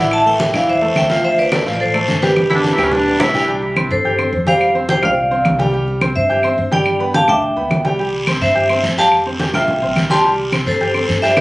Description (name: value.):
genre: latin, salsa.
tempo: 213 BPM.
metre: 4/4.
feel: straight.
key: C major.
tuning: A4 = 439 Hz.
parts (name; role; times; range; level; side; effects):
bright upright piano; accompaniment; 0.0-11.4 s; E3 to G6; -20 LUFS; equal; none.
upright bass; bass; 0.0-11.4 s; G1 to G2; -24 LUFS; equal; none.
vibraphone with medium hard mallets; melody; 0.1-11.4 s; G4 to C6; -15 LUFS; equal; none.
claves; percussion; 0.1-11.4 s; none; -22 LUFS; equal; none.
congas; percussion; 0.1-11.4 s; none; -21 LUFS; equal; none.
guiro; percussion; 0.1-3.5, 8.0-11.4 s; none; -25 LUFS; equal; none.
breathy baritone saxophone; second line; 2.5-3.5 s; Db4 to E4; -18 LUFS; equal; tape echo.
room: moderate studio ambience, RT60 0.5 s.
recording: recorded on a phone in the room, club reverb, compression.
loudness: -13 LUFS.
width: side -20 dB against mid.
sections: 0.0-3.5 A section; 3.5-11.4 B section.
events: drum fill 2.4-3.5.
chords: 0.1 Amadd9; 1.2 Dm7; 2.4 G6; 3.5 C5; 5.7 C; 6.9 G; 8.0 C; 9.1 Fsus2; 10.2 C5.